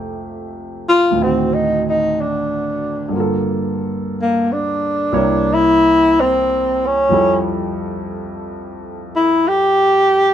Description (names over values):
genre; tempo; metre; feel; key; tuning
jazz ballad; 60 BPM; 4/4; swing 69% on 8ths; F major; A4 = 440 Hz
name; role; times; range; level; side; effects
warm grand piano; accompaniment; 0.0-10.3 s; C2 to E5; -21 LUFS; right 1 dB; none
breathy tenor saxophone; melody; 0.9-10.3 s; Bb3 to G4; -14 LUFS; equal; none
room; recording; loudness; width
moderate studio reverb, RT60 0.7 s; band playing live in one room; -14 LUFS; side -10 dB against mid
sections
0.0-10.3 A section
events
tenor saxophone solo 0.0-10.3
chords
0.0 Fmaj9; 1.2 D7b9; 3.1 Gm9; 5.1 C7b9; 7.1 Fmaj9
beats
0.16 1.15 2.15 | 3.14 4.12 5.11 6.10 | 7.10 8.09 9.08 10.07